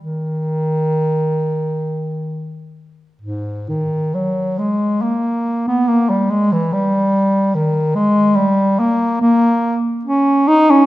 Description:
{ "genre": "classical, free, expressive piece for unaccompanied bass clarinet", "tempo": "44-74 BPM", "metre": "3/4", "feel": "rubato", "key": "unclear", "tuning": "A4 = 440 Hz", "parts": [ { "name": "warm bass clarinet", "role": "solo", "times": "0.0-10.9 s", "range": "G#2 to D#4", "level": "-14 LUFS", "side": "equal", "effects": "none" } ], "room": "wet recital hall reverb, RT60 1.4 s", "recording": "none", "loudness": "-14 LUFS", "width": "side -16 dB against mid", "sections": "0.0-3.2 A section; 3.2-10.9 A section", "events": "none", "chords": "none" }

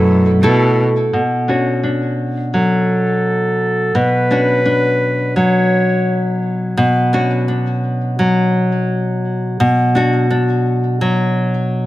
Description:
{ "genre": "folktronica", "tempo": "85 BPM", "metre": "4/4", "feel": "straight", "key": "B minor", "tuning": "A4 = 440 Hz", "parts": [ { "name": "warm clarinet", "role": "melody", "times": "0.0-6.4 s", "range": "A4 to C#5", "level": "-18 LUFS", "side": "equal", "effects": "digital delay" }, { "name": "nylon-string guitar", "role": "arpeggios", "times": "0.0-11.9 s", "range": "B2 to A4", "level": "-14 LUFS", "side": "equal", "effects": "low-pass filter, digital delay" }, { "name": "rich cello", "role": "bass", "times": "0.0-0.8 s", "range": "F#2 to B2", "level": "-14 LUFS", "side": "equal", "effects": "none" } ], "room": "light reverb, small room ambience", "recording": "none", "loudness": "-13 LUFS", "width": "side -16 dB against mid", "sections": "0.0-1.1 A section; 1.1-11.9 B section", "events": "none", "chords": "0.0 Asus2; 1.1 Bmadd9" }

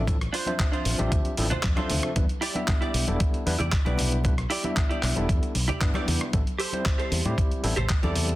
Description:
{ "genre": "nu-disco, nu disco", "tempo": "115 BPM", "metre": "4/4", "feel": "straight", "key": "unclear", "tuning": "A4 = 440 Hz", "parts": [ { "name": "overdriven tine electric piano", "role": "accompaniment", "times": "0.0-8.4 s", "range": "F3 to E5", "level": "-31 LUFS", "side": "left 1 dB", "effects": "fast tremolo, sidechain pumping, slapback echo" }, { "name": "fingered electric bass with an envelope filter", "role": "bass", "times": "0.0-8.4 s", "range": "E1 to A2", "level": "-27 LUFS", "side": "equal", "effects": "none" }, { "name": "dusty soul sampler-style drum kit", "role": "drums", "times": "0.1-8.4 s", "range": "handclaps, hi-hat, rim click", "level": "-31 LUFS", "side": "equal", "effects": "soft clipping on snare" }, { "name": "electronic kick drum", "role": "drums", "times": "0.1-8.0 s", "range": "none", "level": "-25 LUFS", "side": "equal", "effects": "none" }, { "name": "congas", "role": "percussion", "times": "0.1-8.3 s", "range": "none", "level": "-35 LUFS", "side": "left 2 dB", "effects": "none" }, { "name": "direct-recorded clean electric guitar", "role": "riff", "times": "0.3-8.4 s", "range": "D4 to D5", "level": "-31 LUFS", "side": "right 2 dB", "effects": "ensemble chorus" } ], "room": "digital ambience", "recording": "dense, heavily limited modern master", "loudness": "-23 LUFS", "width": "side -16 dB against mid", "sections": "0.0-8.4 A section", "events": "none", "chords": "0.0 Dm7; 2.2 Em7; 6.3 Am7" }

